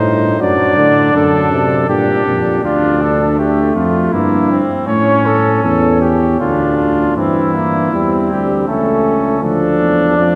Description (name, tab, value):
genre	classical, imitative canzona for brass ensemble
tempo	80 BPM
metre	3/4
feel	straight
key	unclear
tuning	A4 = 442 Hz
part	mellow cornet	melody	0.0-10.4 s	E4 to D5	-19 LUFS	equal	none
part	warm flugelhorn	second line	0.0-10.4 s	A3 to Eb4	-19 LUFS	equal	none
part	warm trombone	accompaniment	0.0-2.6, 7.2-10.4 s	A2 to A3	-20 LUFS	equal	none
part	warm tuba	bass	0.0-10.4 s	C#2 to A2	-19 LUFS	equal	none
room	wet cathedral reverb, RT60 5.4 s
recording	none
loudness	-14 LUFS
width	mono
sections	0.0-7.2 A section; 7.2-10.4 B section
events	none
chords	0.4 D/F#; 1.9 Gm; 2.6 Dm; 4.1 Edim/G; 4.9 A; 6.4 Dm; 7.2 Edim/G; 8.7 A/C#; 9.4 Dm